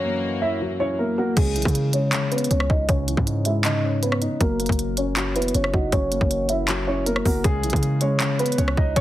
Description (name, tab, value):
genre	hip hop, trap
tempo	158 BPM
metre	4/4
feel	half-time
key	C# dorian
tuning	A4 = 440 Hz
part	dark concert grand piano	melody	0.0-9.0 s	G#3 to E5	-24 LUFS	right 1 dB	low-pass filter, tape echo
part	dark grand piano	accompaniment	0.0-9.0 s	C#3 to F#4	-28 LUFS	left 1 dB	low-pass filter
part	warm studio string section	sustained chords	0.0-1.3 s	F#2 to A#3	-32 LUFS	left 1 dB	none
part	hard-hitting 808-style bass	bass	1.4-9.0 s	F#1 to C#3	-25 LUFS	equal	none
part	trap drum kit	drums	1.4-9.0 s	crash cymbal, handclaps, hi-hat, kick drum, rim click	-24 LUFS	equal	none
room	small room ambience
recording	heavily compressed radio sound, multiband compression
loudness	-19 LUFS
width	side -14 dB against mid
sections	0.0-1.4 A section; 1.4-9.0 B section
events	filter sweep 1.4-7.4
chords	0.0 F#7; 1.4 C#madd9; 4.4 F#7; 7.4 C#madd9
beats	0.23 0.61 0.99 | 1.37 1.75 2.13 2.51 | 2.89 3.27 3.65 4.03 | 4.41 4.79 5.17 5.55 | 5.93 6.30 6.68 7.07 | 7.45 7.82 8.20 8.58 | 8.96